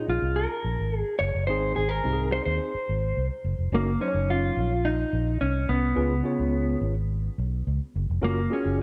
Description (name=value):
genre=uptempo 1960s-style soul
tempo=107 BPM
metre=4/4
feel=straight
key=unclear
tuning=A4 = 439 Hz
part: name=mellow electric guitar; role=melody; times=0.0-8.8 s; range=Bb3 to Db5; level=-30 LUFS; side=equal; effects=spring reverb
part: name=mellow tine electric piano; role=accompaniment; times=0.0-8.8 s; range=Ab2 to Db5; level=-32 LUFS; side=equal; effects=none
part: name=vintage muted fingered electric bass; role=bass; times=0.1-8.8 s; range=F1 to Eb2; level=-29 LUFS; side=equal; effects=none
room=digital ambience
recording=none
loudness=-26 LUFS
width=mono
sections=0.0-3.7 A section; 3.7-8.8 B section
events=clean electric guitar solo 0.0-3.7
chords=0.0 Bbm; 1.5 Ab; 3.7 Gb6; 6.0 Db7; 8.2 Gbmaj7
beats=0.35 0.91 | 1.48 2.04 2.60 3.16 | 3.72 4.29 4.85 5.41 | 5.97 6.54 7.10 7.66 | 8.22 8.79